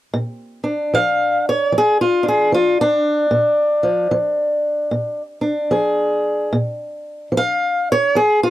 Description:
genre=acoustic country blues, solo or duo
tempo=75 BPM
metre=4/4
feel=swing 62% on 8ths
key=Bb mixolydian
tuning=A4 = 444 Hz
part: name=fingerpicked swing-style acoustic guitar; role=solo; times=0.1-8.5 s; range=Bb2 to F5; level=-16 LUFS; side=equal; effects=none
room=little or no reverb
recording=dry, close 1970s-style studio recording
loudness=-15 LUFS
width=side -14 dB against mid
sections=0.1-8.5 A section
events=steel-string acoustic guitar solo 0.1-8.5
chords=0.1 Bb7

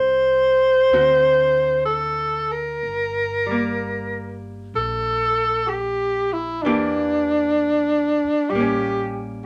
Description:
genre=jazz ballad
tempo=63 BPM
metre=4/4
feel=swing 69% on 8ths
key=unclear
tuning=A4 = 443 Hz
part: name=clear alto saxophone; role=melody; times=0.0-9.3 s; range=D4 to C5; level=-21 LUFS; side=equal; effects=none
part: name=archtop guitar, miked and amplified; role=accompaniment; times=0.0-9.5 s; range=D3 to G4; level=-29 LUFS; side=equal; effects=none
part: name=upright bass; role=bass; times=0.0-9.5 s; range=G1 to E2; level=-38 LUFS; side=equal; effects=none
room=moderate club reverb, RT60 0.5 s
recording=none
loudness=-20 LUFS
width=mono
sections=0.0-9.5 A section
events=none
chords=0.0 Am7 (rootless); 0.9 D7; 2.8 Gmadd9; 6.6 Em7b5; 8.5 A7b9

